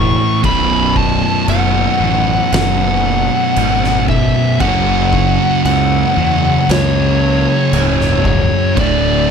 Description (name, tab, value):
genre	stoner and doom metal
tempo	58 BPM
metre	4/4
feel	straight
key	B minor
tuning	A4 = 438 Hz
part	fuzz lead guitar	melody	0.0-9.3 s	C#5 to C#6	-17 LUFS	left 1 dB	distortion, slapback echo
part	heavy high-gain guitar	riff	0.0-9.3 s	B1 to A3	-22 LUFS	equal	distortion
part	thick fuzz guitar	riff	0.0-9.3 s	B1 to A3	-19 LUFS	left 10 dB	distortion
part	thick fuzz guitar	riff	0.0-9.3 s	B1 to A3	-18 LUFS	right 9 dB	distortion
part	fuzz fingered electric bass	bass	0.0-9.3 s	B0 to E2	-18 LUFS	equal	overdrive, tube saturation
part	oversized low-tuned drum kit	drums	0.4-9.0 s	crash cymbal, kick drum, snare drum	-21 LUFS	equal	none
room	light reverb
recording	none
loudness	-11 LUFS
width	side -6 dB against mid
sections	0.0-9.3 A section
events	none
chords	0.4 B5; 4.6 F#5; 8.8 D5